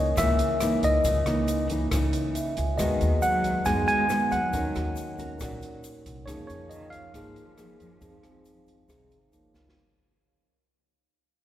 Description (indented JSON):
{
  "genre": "bossa nova",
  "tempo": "138 BPM",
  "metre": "4/4",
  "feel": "straight",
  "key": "Db major",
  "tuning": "A4 = 440 Hz",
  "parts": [
    { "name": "mellow tine electric piano", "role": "melody", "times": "0.0-9.3 s", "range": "Db5 to Ab5", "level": "-27 LUFS", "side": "equal", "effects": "none" },
    { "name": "nylon-string guitar", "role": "accompaniment", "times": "0.0-9.7 s", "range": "Bb2 to Bb4", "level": "-30 LUFS", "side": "equal", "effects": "none" },
    { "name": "vibraphone with soft mallets", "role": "accompaniment", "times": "0.0-9.8 s", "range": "Eb4 to Eb6", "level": "-38 LUFS", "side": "right 1 dB", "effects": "none" },
    { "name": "upright bass", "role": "bass", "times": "0.0-9.7 s", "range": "Ab1 to Gb2", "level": "-30 LUFS", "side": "equal", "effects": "none" },
    { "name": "open jazz drum kit", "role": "drums", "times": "0.2-9.8 s", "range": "hi-hat, kick drum, rim click, snare drum", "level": "-34 LUFS", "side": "equal", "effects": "none" },
    { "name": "egg shaker", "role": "percussion", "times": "0.2-9.8 s", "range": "none", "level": "-44 LUFS", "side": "left 6 dB", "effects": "none" },
    { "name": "warm cello", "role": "second line", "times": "2.8-9.3 s", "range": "Db3 to Ab3", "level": "-35 LUFS", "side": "left 1 dB", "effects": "none" }
  ],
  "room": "wet church reverb, RT60 3.4 s",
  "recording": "recorded in a church or concert hall",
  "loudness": "-23 LUFS",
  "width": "side -12 dB against mid",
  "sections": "0.0-9.8 A section",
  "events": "fade-out 0.0-9.8; vibraphone fill 2.1-2.8; drum fill 9.5",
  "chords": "0.0 Dbm69; 2.8 Cb6/Eb; 4.5 Ebm7; 6.3 Db69/F; 8.0 Fm7; 9.3 Db69",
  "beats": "0.17 0.61 | 1.04 1.48 1.92 2.35 | 2.79 3.22 3.66 4.09 | 4.53 4.96 5.40 5.84 | 6.27 6.71 7.14 7.58 | 8.02 8.45 8.88 9.32"
}